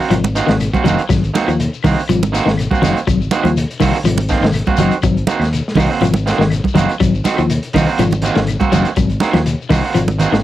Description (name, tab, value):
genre	afrobeat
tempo	122 BPM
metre	4/4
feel	straight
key	Ab mixolydian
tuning	A4 = 440 Hz
part	electric guitar at the edge of break-up	stabs	0.0-10.4 s	Eb3 to Gb4	-18 LUFS	right 5 dB	cassette tape
part	shekere	percussion	0.0-10.4 s	none	-26 LUFS	left 6 dB	none
part	electric guitar at the edge of break-up	arpeggios	0.1-10.4 s	Eb3 to Gb3	-18 LUFS	left 5 dB	tremolo, cassette tape
part	fingered electric bass	bass	0.1-10.4 s	Gb1 to Eb2	-18 LUFS	left 1 dB	none
part	crunchy breakbeat drum kit	drums	0.1-10.4 s	hi-hat, kick drum, snare drum	-21 LUFS	left 1 dB	none
part	claves	percussion	0.1-10.1 s	none	-32 LUFS	left 8 dB	none
part	congas	percussion	0.1-10.3 s	none	-18 LUFS	right 5 dB	none
room	light reverb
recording	home recording on cassette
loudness	-13 LUFS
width	side -13 dB against mid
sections	0.0-10.4 A section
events	none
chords	0.0 Ab9